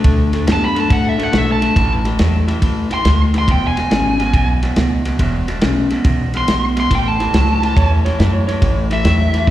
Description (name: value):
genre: electric blues shuffle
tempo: 140 BPM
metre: 4/4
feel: swing 67% on 8ths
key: A major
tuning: A4 = 439 Hz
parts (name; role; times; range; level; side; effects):
- electric guitar through a small old amp; riff; 0.0-9.5 s; E2 to B3; -19 LUFS; left 2 dB; slapback echo
- upright bass; bass; 0.0-9.5 s; E1 to A2; -17 LUFS; equal; none
- warm soul drum kit; drums; 0.0-9.5 s; kick drum, ride cymbal, snare drum; -19 LUFS; equal; none
- smooth overdriven lead guitar; melody; 0.5-9.5 s; E5 to C6; -20 LUFS; right 1 dB; plate reverb, slapback echo, tape echo
- electric slide guitar; second line; 7.8-8.8 s; C#5 to E5; -25 LUFS; right 2 dB; plate reverb, slapback echo
room: little or no reverb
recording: live gig heard through the venue's PA, recital hall reverb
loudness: -13 LUFS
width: side -13 dB against mid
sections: 0.0-9.5 A section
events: none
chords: 0.0 D; 1.8 A5; 3.5 E; 6.9 A